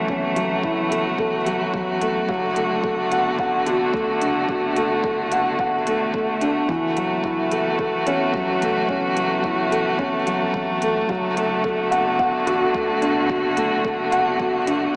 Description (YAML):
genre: piano and strings electronica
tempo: 109 BPM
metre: 4/4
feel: straight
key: unclear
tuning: A4 = 440 Hz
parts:
  - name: muted string quartet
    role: sustained chords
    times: 0.0-15.0 s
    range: D3 to F#4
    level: -21 LUFS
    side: equal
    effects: sidechain pumping
  - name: felt-muted upright piano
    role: riff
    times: 0.0-15.0 s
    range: E3 to F#5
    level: -22 LUFS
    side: equal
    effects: analog delay
  - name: round analog bass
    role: bass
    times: 0.0-14.9 s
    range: E1 to C#2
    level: -39 LUFS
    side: equal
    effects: sidechain pumping
  - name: electronic kick drum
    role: drums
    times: 0.1-14.5 s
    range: none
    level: -33 LUFS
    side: equal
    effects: overdrive
  - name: electronic hi-hat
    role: drums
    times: 0.4-14.8 s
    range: none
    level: -36 LUFS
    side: equal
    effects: overdrive
room: wet plate reverb, RT60 1.6 s, digital ambience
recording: dreamy mix soaked in reverb, small speaker sound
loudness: -18 LUFS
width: side -34 dB against mid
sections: 0.0-15.0 A section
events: none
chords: 0.0 F#m7; 2.3 D/F#; 6.7 F#m7; 11.1 D/F#